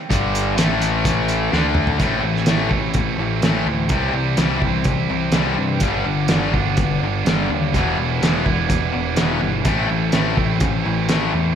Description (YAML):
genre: classic rock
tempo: 125 BPM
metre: 4/4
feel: straight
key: A minor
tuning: A4 = 440 Hz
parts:
  - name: distorted electric guitar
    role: riff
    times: 0.1-11.6 s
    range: E2 to D4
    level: -22 LUFS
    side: left 8 dB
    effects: distortion, slapback echo
  - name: overdriven electric guitar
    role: riff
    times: 0.1-11.6 s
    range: G2 to A4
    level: -23 LUFS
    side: right 9 dB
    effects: none
  - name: fuzz picked electric bass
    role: bass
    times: 0.1-11.6 s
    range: E1 to G2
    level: -24 LUFS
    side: equal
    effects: overdrive
  - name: cloth-damped thuddy drum kit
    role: drums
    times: 0.1-11.2 s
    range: hi-hat, kick drum, snare drum, toms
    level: -21 LUFS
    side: right 1 dB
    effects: none
room: moderate scoring stage reverb, RT60 1.6 s, small room ambience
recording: big arena sound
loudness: -16 LUFS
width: side -8 dB against mid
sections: 0.0-2.0 A section; 2.0-11.6 B section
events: drum fill 1.5-2.0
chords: 0.1 G5; 0.6 A5; 1.5 D5; 2.0 Am; 3.9 C; 5.8 G; 7.7 Em; 9.7 Am